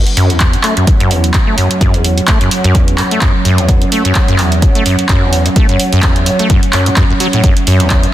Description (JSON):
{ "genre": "acid house", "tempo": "128 BPM", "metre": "4/4", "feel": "swing 56% on 16ths", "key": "F# minor", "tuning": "A4 = 440 Hz", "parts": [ { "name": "dark analog pad", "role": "sustained chords", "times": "0.0-8.1 s", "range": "F#3 to F#5", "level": "-17 LUFS", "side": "right 2 dB", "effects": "chorus, sidechain pumping" }, { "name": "acid bass, saw", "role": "riff", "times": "0.0-8.1 s", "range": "E2 to A3", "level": "-13 LUFS", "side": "equal", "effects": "wide subtle chorus" }, { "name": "punchy analog drum machine", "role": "drums", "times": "0.1-8.1 s", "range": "handclaps, hi-hat", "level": "-17 LUFS", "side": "right 1 dB", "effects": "none" }, { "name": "electronic kick drum", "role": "drums", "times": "0.4-8.0 s", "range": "none", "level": "-12 LUFS", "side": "equal", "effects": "none" } ], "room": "moderate lush hall reverb, RT60 1.8 s", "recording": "dense, heavily limited modern master", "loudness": "-9 LUFS", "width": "side -13 dB against mid", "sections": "0.0-8.1 A section", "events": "none", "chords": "0.0 F#5", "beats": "0.41 0.87 1.34 | 1.81 2.28 2.75 3.22 | 3.69 4.16 4.62 5.09 | 5.56 6.03 6.50 6.97 | 7.44 7.91" }